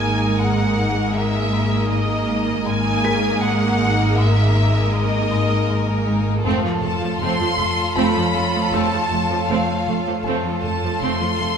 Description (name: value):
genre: cinematic, suspense film score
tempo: 79 BPM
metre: 5/4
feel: straight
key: unclear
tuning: A4 = 440 Hz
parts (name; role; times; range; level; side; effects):
- warm studio violin section; melody; 0.0-11.6 s; Eb5 to C6; -24 LUFS; left 1 dB; none
- clear studio violin section; second line; 0.0-11.6 s; Eb4 to Bb4; -26 LUFS; equal; none
- clear studio viola section; accompaniment; 0.0-11.5 s; F3 to C4; -24 LUFS; right 3 dB; none
- glass harmonica; sustained chords; 0.0-11.6 s; A4 to Eb6; -30 LUFS; right 1 dB; none
- buzzing marimba with hard mallets; riff; 0.0-11.6 s; F2 to Ab3; -24 LUFS; left 3 dB; none
- clear symphonic double bass section; bass; 0.0-11.5 s; F1 to Ab1; -26 LUFS; right 2 dB; none
- dark symphonic cello section; bass; 0.0-11.5 s; F2 to Ab2; -27 LUFS; right 2 dB; none
- felt-muted upright piano; texture; 3.0-11.6 s; Bb4 to Cb7; -33 LUFS; left 3 dB; none
- warm symphonic violin section; texture; 6.4-11.6 s; Db5 to A5; -32 LUFS; left 4 dB; none
room: wet scoring stage reverb, RT60 1.6 s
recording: minimal, uncompressed stereo recording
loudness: -17 LUFS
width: side -7 dB against mid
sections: 0.0-11.6 A section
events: none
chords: 0.0 Absus2; 6.5 F